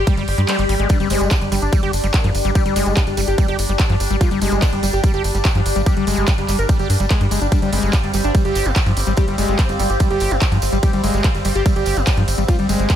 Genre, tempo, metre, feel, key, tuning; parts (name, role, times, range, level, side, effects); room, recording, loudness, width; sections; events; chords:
psychedelic trance; 145 BPM; 4/4; straight; A4 = 439 Hz
wide unison lead; melody; 0.0-12.9 s; G3 to Bb4; -25 LUFS; equal; phaser, sidechain pumping, ping-pong delay
bubbling stepped-filter texture; sustained chords; 0.0-13.0 s; G3 to G4; -27 LUFS; equal; chorus, built-in reverb, sidechain pumping
tight sequencer bass; bass; 0.0-12.9 s; G1 to G2; -20 LUFS; equal
granular cloud pad; texture; 0.0-13.0 s; G4 to C6; -27 LUFS; left 1 dB; built-in reverb, sidechain pumping
overdriven acid bass; riff; 0.1-13.0 s; F3 to G4; -24 LUFS; moving between left 9 dB and right 9 dB; distortion, auto-pan, sidechain pumping, ping-pong delay
big-room dance drum kit; drums; 0.1-13.0 s; handclaps, hi-hat, ride cymbal; -26 LUFS; right 1 dB; overdrive
electronic kick drum; drums; 0.1-13.0 s; -18 LUFS; equal
swell; sound effects; 0.3-0.9 s; -28 LUFS; left 2 dB
tambourine; percussion; 0.9-13.0 s; -32 LUFS; right 3 dB
formant-sweep wobble bass; second line; 1.0-2.5, 7.6-9.8 s; Bb3 to C4; -35 LUFS; left 5 dB
little or no reverb; -15 LUFS; side -10 dB against mid
0.0-13.0 A section
swell 0.3-0.9; kick drops out 0.5-0.9
0.0 G5